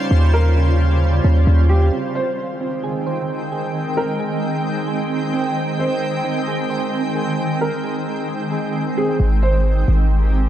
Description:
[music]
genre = hip hop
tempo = 132 BPM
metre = 4/4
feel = half-time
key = Ab major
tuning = A4 = 440 Hz
[part]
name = shimmering ambient pad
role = sustained chords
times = 0.0-10.5 s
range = Db3 to G5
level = -22 LUFS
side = equal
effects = chorus, built-in reverb
[part]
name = soft electric-piano-like synth keys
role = arpeggios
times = 0.0-9.2 s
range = G3 to C5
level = -28 LUFS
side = right 6 dB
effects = chorus, low-pass filter, tape echo
[part]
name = warm 808-style bass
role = bass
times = 0.1-1.9, 9.2-10.5 s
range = Ab1 to Eb2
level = -14 LUFS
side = equal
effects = none
[part]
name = felt-muted upright piano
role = melody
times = 0.3-10.1 s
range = G4 to C5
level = -25 LUFS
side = equal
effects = low-pass filter, tape echo
[sound]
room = light reverb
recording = dark, warm production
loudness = -17 LUFS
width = side -11 dB against mid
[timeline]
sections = 0.0-1.9 A section; 1.9-9.2 B section; 9.2-10.5 C section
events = none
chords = 0.0 Eb13; 1.9 Abmaj7

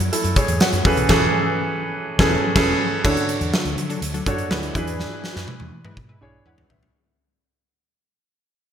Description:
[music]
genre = 1980s-style pop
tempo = 123 BPM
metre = 4/4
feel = straight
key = unclear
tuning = A4 = 440 Hz
[part]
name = warm baby grand piano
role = accompaniment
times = 0.0-7.0 s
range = D3 to G#5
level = -21 LUFS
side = right 1 dB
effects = none
[part]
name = vintage muted fingered electric bass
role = bass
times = 0.0-6.9 s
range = E1 to E3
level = -26 LUFS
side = equal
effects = none
[part]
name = huge arena drum kit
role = drums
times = 0.0-6.9 s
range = crash cymbal, hi-hat, kick drum, snare drum, tambourine, toms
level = -22 LUFS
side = equal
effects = gated reverb
[part]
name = funky polysynth comp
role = stabs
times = 1.1-6.8 s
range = E3 to B4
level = -29 LUFS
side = left 2 dB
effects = none
[sound]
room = moderate lush hall reverb, RT60 1.9 s, small room ambience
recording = bright 1980s-style digital production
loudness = -18 LUFS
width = side -9 dB against mid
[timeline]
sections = 0.0-3.0 A section; 3.0-6.9 B section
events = band accent 1.1-3.0; fade-out 3.0-6.9; drum fill 5.0-6.9; grand piano fill 6.0-6.9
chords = 0.0 F#m7; 0.8 Amaj9/E; 3.0 Dmaj7; 4.8 E7

